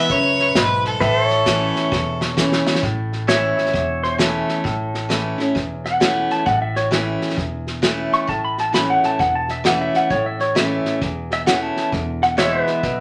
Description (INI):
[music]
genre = honky-tonk and classic country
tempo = 132 BPM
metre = 4/4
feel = swing 64% on 8ths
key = A major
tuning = A4 = 440 Hz
[part]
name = bright fiddle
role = melody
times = 0.0-2.3 s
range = A4 to E5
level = -22 LUFS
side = equal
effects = none
[part]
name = picked steel-string acoustic guitar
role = accompaniment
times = 0.0-13.0 s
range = E2 to E4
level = -25 LUFS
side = equal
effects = none
[part]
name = pedal steel guitar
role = sustained chords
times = 0.0-13.0 s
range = B4 to E5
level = -24 LUFS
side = equal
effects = none
[part]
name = upright bass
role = bass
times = 0.1-13.0 s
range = E1 to C#2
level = -31 LUFS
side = equal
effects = none
[part]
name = unplugged drum kit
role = drums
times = 0.1-13.0 s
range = hi-hat, kick drum, snare drum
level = -24 LUFS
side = equal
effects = none
[part]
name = pedal steel guitar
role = second line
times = 3.3-13.0 s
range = A4 to C#6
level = -24 LUFS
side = equal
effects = none
[sound]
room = wet studio reverb, RT60 0.5 s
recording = none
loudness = -19 LUFS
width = mono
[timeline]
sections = 0.0-2.8 A section; 2.8-13.0 B section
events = drum fill 1.9-2.8; pedal steel guitar solo 2.8-13.0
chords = 0.0 E; 1.0 A; 11.9 E